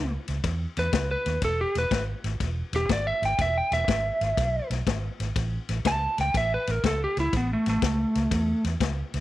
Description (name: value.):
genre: electric blues shuffle.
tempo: 122 BPM.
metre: 4/4.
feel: swing 67% on 8ths.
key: unclear.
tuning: A4 = 441 Hz.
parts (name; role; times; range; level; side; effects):
lightly driven lead guitar; melody; 0.0-8.6 s; A3 to A5; -26 LUFS; right 1 dB; none.
vintage muted fingered electric bass; bass; 0.0-9.2 s; E1 to E2; -29 LUFS; right 1 dB; none.
vintage drum kit; drums; 0.3-9.2 s; kick drum, ride cymbal, snare drum; -30 LUFS; left 4 dB; none.
room: light reverb, small room ambience.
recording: 1960s-style stereo.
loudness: -24 LUFS.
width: side -15 dB against mid.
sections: 0.0-9.2 A section.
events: lead electric guitar solo 0.0-9.2.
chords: 0.0 A (rootless); 1.4 E; 5.4 A.